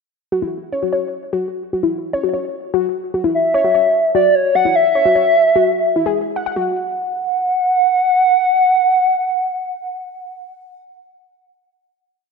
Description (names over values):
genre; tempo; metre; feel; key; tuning
IDM; 149 BPM; 4/4; straight; unclear; A4 = 439 Hz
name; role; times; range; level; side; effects
warbly dusty pluck; arpeggios; 0.3-6.8 s; E4 to F#5; -19 LUFS; left 4 dB; chorus, cassette tape, tape echo
warbly nostalgic lead; melody; 3.3-10.5 s; C#5 to F#5; -14 LUFS; right 1 dB; chorus, ping-pong delay
room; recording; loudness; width
moderate lush hall reverb, RT60 2.1 s; dark, warm production; -14 LUFS; side -4 dB against mid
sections
0.1-6.6 groove; 6.6-9.8 final note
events
none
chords
0.1 Dmaj9/E (rootless); 5.0 C#m; 6.6 N.C.